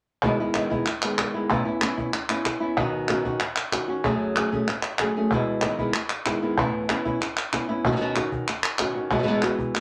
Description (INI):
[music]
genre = flamenco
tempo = 189 BPM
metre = 4/4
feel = straight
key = E major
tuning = A4 = 441 Hz
[part]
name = flamenco guitar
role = melody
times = 0.2-9.8 s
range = E2 to G#4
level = -27 LUFS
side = equal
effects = none
[part]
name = cajon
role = percussion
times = 0.2-9.8 s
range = none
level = -34 LUFS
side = equal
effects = none
[part]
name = palmas hand claps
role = percussion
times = 0.2-9.8 s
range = none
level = -29 LUFS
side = equal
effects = none
[sound]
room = wet small room reverb, RT60 0.5 s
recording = none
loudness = -25 LUFS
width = mono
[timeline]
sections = 0.2-9.8 A section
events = none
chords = 0.2 Emaj7; 1.5 Aadd9 (rootless); 2.8 Badd9; 4.0 F#madd9; 5.3 Emaj7; 6.6 Aadd9; 7.9 Badd9; 9.1 Eadd9